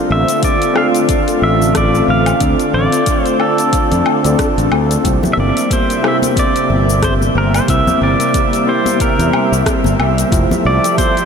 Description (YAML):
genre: sunset chillout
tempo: 91 BPM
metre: 4/4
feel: swing 57% on 16ths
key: unclear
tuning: A4 = 440 Hz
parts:
  - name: tine electric piano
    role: accompaniment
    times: 0.0-11.3 s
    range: A3 to D5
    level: -19 LUFS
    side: equal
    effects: auto-pan, diffuse ambient delay, shimmer reverb
  - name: lush unison pad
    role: sustained chords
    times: 0.0-11.3 s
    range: C3 to E5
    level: -18 LUFS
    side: equal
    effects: chorus, shimmer reverb
  - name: pedal steel guitar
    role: melody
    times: 0.1-11.3 s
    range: A4 to F5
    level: -17 LUFS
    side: equal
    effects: tape echo, shimmer reverb
  - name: growling fingered electric bass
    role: bass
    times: 0.1-10.8 s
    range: F1 to F2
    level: -16 LUFS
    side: equal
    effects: overdrive
  - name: deep house drum kit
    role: drums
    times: 0.3-11.3 s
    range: cabasa, hi-hat, rim click, woodblock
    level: -23 LUFS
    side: left 2 dB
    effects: overdrive
  - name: electronic kick drum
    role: drums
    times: 0.4-11.1 s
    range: none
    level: -18 LUFS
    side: equal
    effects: overdrive
  - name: congas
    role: percussion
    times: 5.2-11.1 s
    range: none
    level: -24 LUFS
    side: left 3 dB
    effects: none
room: wet huge ambient reverb, RT60 7.3 s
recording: dreamy mix soaked in reverb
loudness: -11 LUFS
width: side -6 dB against mid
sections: 0.0-11.3 A section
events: none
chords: 0.0 Dm7; 5.0 C7; 10.3 Fmaj9